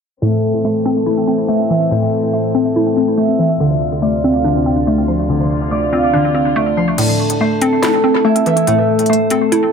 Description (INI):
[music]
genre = hip hop, drill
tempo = 142 BPM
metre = 4/4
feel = half-time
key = A minor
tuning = A4 = 441 Hz
[part]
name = hollow square pluck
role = accompaniment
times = 0.2-9.7 s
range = A2 to E4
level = -16 LUFS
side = equal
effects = chorus, low-pass filter, tape echo
[part]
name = warm symphonic string section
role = sustained chords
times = 0.2-6.9 s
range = D2 to F4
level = -23 LUFS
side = equal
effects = none
[part]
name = concert harp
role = arpeggios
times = 0.2-9.7 s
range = D3 to C6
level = -15 LUFS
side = equal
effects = low-pass filter, tape echo
[part]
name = drill drum kit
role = drums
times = 7.0-9.6 s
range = crash cymbal, handclaps, hi-hat, snare drum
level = -22 LUFS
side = left 2 dB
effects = tape echo
[sound]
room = light reverb, small room reverb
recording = echo-heavy mix, low-pass filter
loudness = -12 LUFS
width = side -6 dB against mid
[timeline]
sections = 0.2-7.0 A section; 7.0-9.7 B section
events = filter sweep 0.2-7.0; kick muted 7.0-9.7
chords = 0.2 Am; 3.6 Dm7; 7.0 Am